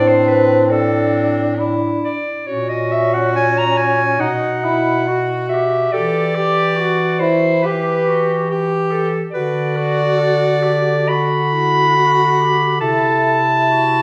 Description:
classical, lyrical piece for single-reed quartet; 70 BPM; 4/4; rubato; E minor; A4 = 440 Hz
bright clarinet; melody; 0.0-14.0 s; A4 to B5; -20 LUFS; equal
bright clarinet; second line; 0.0-14.0 s; C4 to B4; -26 LUFS; equal
mellow tenor saxophone; accompaniment; 0.0-14.0 s; C4 to G4; -22 LUFS; equal
mellow bass clarinet; bass; 0.0-14.0 s; A2 to E3; -23 LUFS; equal
wet recital hall reverb, RT60 1.5 s; small room reverb; -16 LUFS; mono
0.0-14.0 A section
0.0 Am; 2.5 F#/A#; 4.2 B; 5.9 Em; 9.3 Bm/D; 12.8 Am/C

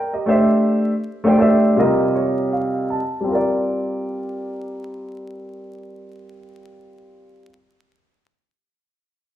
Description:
hip hop; 80 BPM; 4/4; swing 63% on 16ths; Bb major; A4 = 440 Hz
warm upright piano; accompaniment; 0.0-7.6 s; C3 to A5; -18 LUFS; equal; low-pass filter
wet large studio reverb, RT60 1.2 s; band playing live in one room, vinyl crackle; -16 LUFS; side -12 dB against mid
0.0-3.3 A section; 3.3-6.3 B section
filter sweep on upright piano 0.0-3.3; upright piano fill 1.8-3.3
0.3 C69/A; 1.8 Ebadd9; 3.3 Bb69

